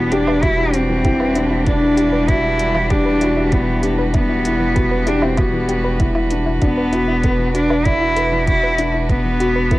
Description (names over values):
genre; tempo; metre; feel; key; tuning
piano and strings electronica; 97 BPM; 4/4; straight; E minor; A4 = 440 Hz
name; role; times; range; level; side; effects
rich cello; melody; 0.0-9.8 s; B3 to E4; -18 LUFS; equal; cassette tape
rich string quartet; sustained chords; 0.0-9.8 s; E3 to B4; -25 LUFS; equal; cassette tape
felt-muted upright piano; riff; 0.0-9.8 s; D4 to D5; -23 LUFS; left 2 dB; cassette tape
warm sub bass; bass; 0.0-9.8 s; E1; -23 LUFS; equal; sidechain pumping
soft round pluck; arpeggios; 0.1-9.8 s; E3 to B4; -26 LUFS; left 2 dB; chorus, sidechain pumping, cassette tape, tape echo
electronic hi-hat and woodblock; drums; 0.1-9.8 s; none; -28 LUFS; right 1 dB; overdrive, cassette tape
electronic kick drum; drums; 0.4-9.8 s; none; -20 LUFS; equal; overdrive, cassette tape
room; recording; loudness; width
light reverb; home recording on cassette; -14 LUFS; side -17 dB against mid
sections
0.0-9.8 A section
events
none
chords
0.0 Em9; 6.6 Bm/E